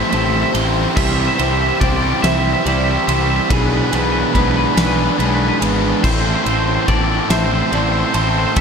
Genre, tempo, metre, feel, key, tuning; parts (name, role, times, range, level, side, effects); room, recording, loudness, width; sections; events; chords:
post-rock; 47 BPM (dotted quarters); 6/8; straight; A4 = 439 Hz
twangy electric guitar; melody; 0.0-8.6 s; B4 to E5; -22 LUFS; right 1 dB; tape echo
soft additive organ-like pad; sustained chords; 0.0-8.6 s; C5 to E6; -31 LUFS; left 4 dB
semi-hollow electric guitar; arpeggios; 0.0-8.6 s; G#4 to E5; -28 LUFS; right 3 dB; lush chorus, tape echo
twelve-string electric guitar; arpeggios; 0.0-6.0 s; A2 to G#3; -25 LUFS; left 2 dB; spring reverb, tape echo
biting overdriven guitar; riff; 0.0-8.6 s; A2 to C5; -22 LUFS; left 14 dB
overdriven electric guitar; riff; 0.0-8.6 s; A2 to A4; -21 LUFS; right 13 dB
fuzz fingered electric bass; bass; 0.1-8.6 s; G#1 to C2; -20 LUFS; equal; overdrive
big rock drum kit; drums; 0.1-8.6 s; crash cymbal, kick drum, ride cymbal, snare drum; -22 LUFS; equal
light reverb, small room ambience; -14 LUFS; side -6 dB against mid
0.0-8.6 A section
0.0 Am7; 1.0 Cmaj7; 3.5 E7/B; 6.0 Am7